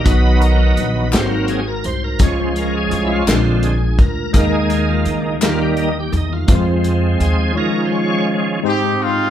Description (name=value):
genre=slow gospel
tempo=56 BPM (dotted quarters)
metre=6/8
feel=straight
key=Ab major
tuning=A4 = 440 Hz
part: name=tine electric piano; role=accompaniment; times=0.0-9.3 s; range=Ab2 to D#5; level=-22 LUFS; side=left 3 dB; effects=overdrive, medium stereo tremolo
part: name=bright tonewheel organ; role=sustained chords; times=0.0-8.6 s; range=D3 to Db5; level=-19 LUFS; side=right 2 dB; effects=slow rotary speaker, overdrive, chorus vibrato
part: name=upright bass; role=bass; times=0.0-7.5 s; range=Ab1 to F2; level=-18 LUFS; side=equal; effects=none
part: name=warm soul drum kit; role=drums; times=0.1-7.4 s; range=hi-hat, kick drum, snare drum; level=-17 LUFS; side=equal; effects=none
part: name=group handclap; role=percussion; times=1.1-5.8 s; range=none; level=-26 LUFS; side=left 3 dB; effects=none
part: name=clear horn section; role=melody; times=8.6-9.3 s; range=C4 to G4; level=-16 LUFS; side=equal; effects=none
room=light reverb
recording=band playing live in one room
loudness=-14 LUFS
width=side -10 dB against mid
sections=0.0-8.6 A section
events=tonewheel organ solo 0.0-8.6; break 7.6-8.6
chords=0.1 B; 1.1 Ab7; 2.2 Db; 3.3 Bb7; 4.3 Ebsus4; 5.4 Eb; 6.5 Fm; 7.6 Eb9sus4; 8.6 Abmaj7